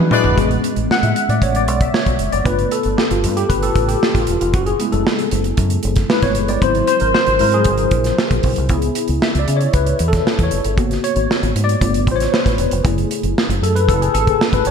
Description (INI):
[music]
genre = polished 1980s jazz-funk pop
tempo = 116 BPM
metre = 4/4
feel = straight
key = A major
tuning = A4 = 440 Hz
[part]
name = mellow tine electric piano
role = accompaniment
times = 0.0-14.7 s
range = F#3 to F#5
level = -17 LUFS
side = left 2 dB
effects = medium stereo tremolo, analog chorus
[part]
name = deep dub fingered electric bass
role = bass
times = 0.0-14.7 s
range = E1 to C#3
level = -19 LUFS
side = equal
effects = none
[part]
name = modern studio drum kit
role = drums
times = 0.1-14.7 s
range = hi-hat, kick drum, snare drum, toms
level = -19 LUFS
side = right 1 dB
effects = gated reverb
[sound]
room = moderate lush hall reverb, RT60 1.6 s, small room ambience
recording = bright 1980s-style digital production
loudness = -14 LUFS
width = side -6 dB against mid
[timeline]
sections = 0.4-14.7 A section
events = drum fill 0.0-0.4; tine electric piano solo 0.4-14.7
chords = 0.4 Amaj9; 2.5 G9; 4.5 F#m11; 6.6 G#7b13; 8.7 C#m7; 10.8 G#m7; 11.8 G9; 12.8 F#m9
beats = | 0.37 0.89 1.41 1.93 | 2.45 2.97 3.50 4.02 | 4.54 5.06 5.58 6.10 | 6.62 7.14 7.66 8.18 | 8.70 9.22 9.74 10.26 | 10.77 11.29 11.81 12.33 | 12.85 13.37 13.88 14.40